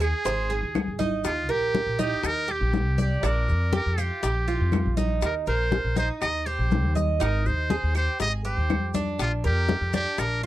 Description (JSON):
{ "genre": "latin, Cuban son and guajira", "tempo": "121 BPM", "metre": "4/4", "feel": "straight", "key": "Eb major", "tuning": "A4 = 439 Hz", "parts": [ { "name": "trumpet with metal mute", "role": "melody", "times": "0.0-10.4 s", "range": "F4 to Eb5", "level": "-29 LUFS", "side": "equal", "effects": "none" }, { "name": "Cuban tres", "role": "arpeggios", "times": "0.0-10.5 s", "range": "D4 to Eb5", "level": "-30 LUFS", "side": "right 5 dB", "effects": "none" }, { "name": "upright bass", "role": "bass", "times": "0.0-10.5 s", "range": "Ab1 to F2", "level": "-26 LUFS", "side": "equal", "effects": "none" }, { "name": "bongos", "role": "percussion", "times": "0.0-10.4 s", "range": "none", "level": "-32 LUFS", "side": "left 7 dB", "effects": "none" }, { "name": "claves", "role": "percussion", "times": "0.0-10.4 s", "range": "none", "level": "-39 LUFS", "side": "right 22 dB", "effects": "none" }, { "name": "congas", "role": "percussion", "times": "0.0-10.5 s", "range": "none", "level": "-29 LUFS", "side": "left 4 dB", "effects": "none" }, { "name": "maracas", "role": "percussion", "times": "0.0-10.5 s", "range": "none", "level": "-43 LUFS", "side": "left 26 dB", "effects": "none" } ], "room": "little or no reverb", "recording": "dry, close 1970s-style studio recording", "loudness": "-22 LUFS", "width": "side -14 dB against mid", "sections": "0.0-10.5 A section", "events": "none", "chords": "0.0 Ab; 1.2 Eb6; 3.2 Bb6; 5.2 Eb6; 7.2 Abmaj7; 9.2 Bb" }